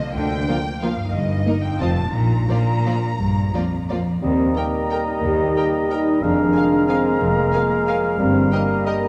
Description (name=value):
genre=classical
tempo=165-197 BPM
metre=3/4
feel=rubato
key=Bb major, Eb major from 4.2 s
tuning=A4 = 440 Hz
part: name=rich studio violin section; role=melody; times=0.0-8.9 s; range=Eb5 to Bb5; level=-33 LUFS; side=equal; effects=none
part: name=concert harp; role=arpeggios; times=0.0-9.1 s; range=F2 to Eb5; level=-30 LUFS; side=equal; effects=none
part: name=rich studio cello section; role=bass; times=0.2-8.5 s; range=Eb2 to D3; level=-27 LUFS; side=equal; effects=none
part: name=rich studio double bass section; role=bass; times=0.2-8.5 s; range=F1 to Eb2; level=-28 LUFS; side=equal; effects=none
part: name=rich studio violin section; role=second line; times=0.5-8.9 s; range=Eb4 to G5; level=-35 LUFS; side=equal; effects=none
part: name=dark studio viola section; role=accompaniment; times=0.5-8.9 s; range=F3 to Bb4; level=-32 LUFS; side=equal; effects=none
part: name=concert flute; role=second line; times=4.2-9.1 s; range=Bb5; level=-31 LUFS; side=equal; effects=none
part: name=mellow clarinet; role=second line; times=4.2-9.1 s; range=Bb4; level=-32 LUFS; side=equal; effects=none
part: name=warm oboe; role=second line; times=4.2-9.1 s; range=Eb5 to F5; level=-30 LUFS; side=equal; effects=none
part: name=mellow bassoon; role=accompaniment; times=4.2-9.1 s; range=G3 to Ab3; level=-26 LUFS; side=equal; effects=none
part: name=dark French horn section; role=sustained chords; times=4.2-9.1 s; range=Bb3 to G4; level=-23 LUFS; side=equal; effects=none
room=wet concert hall reverb, RT60 1.8 s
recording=dark, warm production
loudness=-20 LUFS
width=mono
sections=0.0-4.2 A section; 4.2-9.1 B section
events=none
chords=0.2 Bb/D; 1.1 Eb/G; 1.8 F7; 2.1 Bb; 4.2 Eb; 6.2 Bb7/F; 8.2 Eb/G